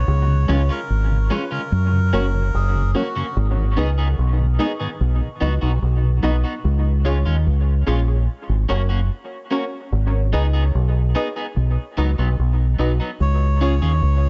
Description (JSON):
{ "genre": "reggae", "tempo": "73 BPM", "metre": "4/4", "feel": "straight", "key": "G# dorian", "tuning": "A4 = 439 Hz", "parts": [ { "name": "melodica", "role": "melody", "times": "0.0-3.4, 13.2-14.3 s", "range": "F#4 to C#5", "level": "-31 LUFS", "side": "equal", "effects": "dub echo" }, { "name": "deep dub fingered electric bass", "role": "bass", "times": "0.0-14.3 s", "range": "F#1 to F#2", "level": "-20 LUFS", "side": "equal", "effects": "none" }, { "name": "mellow tonewheel organ", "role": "accompaniment", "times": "0.3-6.3 s", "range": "F#2 to D#4", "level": "-32 LUFS", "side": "equal", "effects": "none" }, { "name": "electric guitar at the edge of break-up", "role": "accompaniment", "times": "0.5-13.9 s", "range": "F#3 to G#4", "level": "-32 LUFS", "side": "equal", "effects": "subtle chorus, dub echo" }, { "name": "filtered dub chord stab", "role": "stabs", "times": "0.5-13.8 s", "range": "C#4 to D#5", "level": "-30 LUFS", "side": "equal", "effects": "chorus, dub echo" } ], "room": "light reverb", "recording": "echo-heavy mix, nothing above 7.9 kHz", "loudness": "-20 LUFS", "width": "mono", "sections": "0.0-3.4 A section; 3.4-14.3 B section", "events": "none", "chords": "0.1 C#; 1.7 F#; 3.4 G#m; 5.0 B; 6.6 C#; 8.3 F#; 9.9 G#m; 11.6 B; 13.2 C#" }